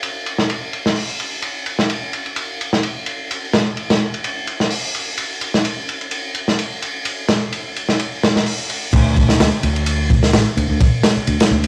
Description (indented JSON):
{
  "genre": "breakbeat, breaks",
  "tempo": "128 BPM",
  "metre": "4/4",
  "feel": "swing 54% on 16ths",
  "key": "unclear",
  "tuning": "A4 = 440 Hz",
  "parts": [
    { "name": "crunchy breakbeat drum kit", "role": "drums", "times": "0.0-11.7 s", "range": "crash cymbal, hi-hat, kick drum, ride cymbal, snare drum", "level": "-20 LUFS", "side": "equal", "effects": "low-pass filter on kick, low-pass filter on cymbals, low-pass filter on hats, low-pass filter on snare, low-pass filter on room" },
    { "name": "fingered electric bass", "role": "bass", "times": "8.9-11.7 s", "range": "A1 to D2", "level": "-19 LUFS", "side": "equal", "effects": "none" }
  ],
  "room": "little or no reverb",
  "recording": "vinyl crackle",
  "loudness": "-19 LUFS",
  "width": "mono",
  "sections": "0.0-8.9 A section; 8.9-11.7 B section",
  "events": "drop 8.9-11.7",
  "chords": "none"
}